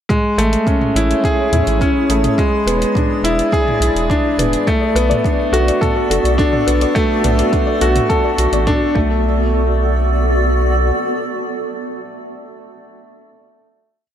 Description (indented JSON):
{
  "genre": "piano and strings electronica",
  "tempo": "105 BPM",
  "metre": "4/4",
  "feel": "straight",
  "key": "B dorian",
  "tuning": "A4 = 441 Hz",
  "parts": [
    { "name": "granular cloud pad", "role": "sustained chords", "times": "0.7-12.3 s", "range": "B3 to D5", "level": "-21 LUFS", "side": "equal", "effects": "built-in reverb" },
    { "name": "warm grand piano", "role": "riff", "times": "0.1-14.0 s", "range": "G#3 to A4", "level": "-16 LUFS", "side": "equal", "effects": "ping-pong delay" },
    { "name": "deep house drum kit", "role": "drums", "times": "0.1-8.8 s", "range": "hi-hat, toms", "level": "-24 LUFS", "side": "right 1 dB", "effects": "none" },
    { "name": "electronic kick drum", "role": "drums", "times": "0.1-9.1 s", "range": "none", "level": "-19 LUFS", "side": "equal", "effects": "none" },
    { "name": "round analog bass", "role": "bass", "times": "0.4-10.9 s", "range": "E1 to E2", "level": "-17 LUFS", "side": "equal", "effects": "sidechain pumping" },
    { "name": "soft round pluck", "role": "arpeggios", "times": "4.7-9.5 s", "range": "A4 to D5", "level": "-26 LUFS", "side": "left 4 dB", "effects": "none" }
  ],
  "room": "light reverb",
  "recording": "none",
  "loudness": "-13 LUFS",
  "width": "side -9 dB against mid",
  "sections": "0.1-9.2 drop; 9.2-11.5 final hit",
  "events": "drop 0.1-9.2",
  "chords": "0.1 Amaj7; 2.4 E7; 4.7 Bm7"
}